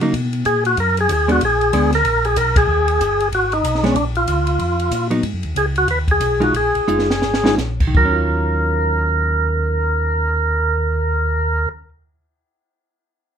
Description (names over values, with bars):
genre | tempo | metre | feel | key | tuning
soul jazz organ trio | 160-188 BPM | 4/4 | swing 62% on 8ths | Eb minor | A4 = 438 Hz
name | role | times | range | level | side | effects
hollow-body jazz guitar | accompaniment | 0.0-11.9 s | Eb3 to F4 | -22 LUFS | equal | none
mellow tonewheel organ | bass | 0.0-11.7 s | Gb1 to Db3 | -21 LUFS | equal | chorus vibrato, slow rotary speaker
compact cocktail drum kit | drums | 0.0-8.1 s | crash cymbal, hi-hat, kick drum, ride cymbal, snare drum | -23 LUFS | equal | none
percussive tonewheel organ | melody | 0.5-11.7 s | Db4 to Cb5 | -18 LUFS | equal | slow rotary speaker
room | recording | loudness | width
light reverb | minimal, uncompressed stereo recording | -15 LUFS | side -8 dB against mid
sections
0.0-5.2 A section; 5.2-7.9 B section; 7.9-11.0 C section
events
band accent 2.5; slowing down 5.2-7.9; drum fill 6.9-7.6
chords
0.1 Bmaj7; 1.4 Bb7b9; 2.7 Ebadd11; 3.3 Abm; 4.0 Bb; 5.2 Abm7; 6.5 Bb7sus4; 7.9 Ebm9